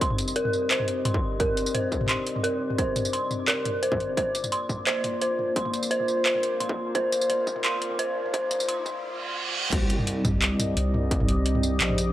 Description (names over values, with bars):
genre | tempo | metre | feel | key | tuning
half-time drum and bass | 173 BPM | 4/4 | half-time | C minor | A4 = 440 Hz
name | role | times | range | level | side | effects
dark analog pad | sustained chords | 0.0-12.1 s | Bb3 to Eb5 | -30 LUFS | left 1 dB | chorus, phaser, sidechain pumping
dark detuned synth bell | arpeggios | 0.0-9.7 s | Bb4 to C6 | -27 LUFS | equal | chorus, low-pass filter, analog delay
drum and bass drum kit | drums | 0.0-12.1 s | crash cymbal, handclaps, hi-hat, tambourine, toms | -28 LUFS | equal | none
electronic kick drum | drums | 0.0-11.2 s | none | -29 LUFS | equal | distortion
riser and reverse cymbal | sound effects | 7.8-9.7 s | none | -34 LUFS | right 3 dB | none
deep soft wobble bass | bass | 9.7-12.1 s | Bb1 to C2 | -26 LUFS | equal | chorus
room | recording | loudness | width
light reverb | dry, gritty hardware recording, high-pass filter | -23 LUFS | side -13 dB against mid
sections
0.0-9.7 A section; 9.7-12.1 B section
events
build-up 0.0-9.7; riser 7.8-9.7; reverse cymbal 9.0-9.7; drop 9.7-12.1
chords
0.0 Cm7; 4.2 Bb; 9.7 Cm7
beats
| 0.01 0.36 0.71 1.05 | 1.40 1.75 2.09 2.44 | 2.79 3.13 3.48 3.83 | 4.17 4.52 4.87 5.21 | 5.56 5.91 6.26 6.60 | 6.95 7.30 7.64 7.99 | 8.34 8.68 9.03 9.38 | 9.72 10.07 10.42 10.76 | 11.11 11.46 11.80